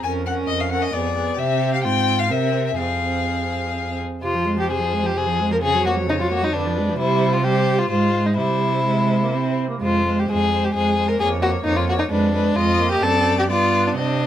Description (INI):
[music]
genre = quick classical-period movement for string quartet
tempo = 120-135 BPM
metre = 3/4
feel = rubato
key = F minor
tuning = A4 = 439 Hz
[part]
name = rich violin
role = melody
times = 0.0-14.3 s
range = B4 to Ab5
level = -26 LUFS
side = left 8 dB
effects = none
[part]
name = warm violin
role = second line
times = 0.0-14.3 s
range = D4 to Bb4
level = -22 LUFS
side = left 2 dB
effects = none
[part]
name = rich viola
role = accompaniment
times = 0.0-14.3 s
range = C3 to Db4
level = -24 LUFS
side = right 3 dB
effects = none
[part]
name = rich cello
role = bass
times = 0.0-14.3 s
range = F2 to C3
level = -24 LUFS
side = right 3 dB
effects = none
[sound]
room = little or no reverb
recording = close, detailed microphones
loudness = -18 LUFS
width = side -11 dB against mid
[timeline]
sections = 0.0-4.2 A section; 4.2-14.3 A section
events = none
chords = 0.0 Gbmaj13/F; 0.9 Bdim7/F; 1.4 C; 1.8 Fm/Ab; 2.3 C7; 2.8 Fm; 5.6 Gb/F; 6.5 Bdim7/F; 7.0 C5; 7.9 Fm/Ab; 8.4 C; 9.8 Fm; 11.2 Gbmaj13/F (rootless); 12.1 Bdim7/F; 12.6 F7(no3); 13.0 D7/F#; 13.5 G7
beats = | 0.04 0.49 0.94 | 1.39 1.84 2.30 | 2.77 3.26 3.75 | 4.23 4.70 5.16 | 5.63 6.08 6.54 | 6.99 7.44 7.90 | 8.38 8.86 9.35 | 9.83 10.30 10.76 | 11.21 11.66 12.11 | 12.57 13.03 13.50 | 13.98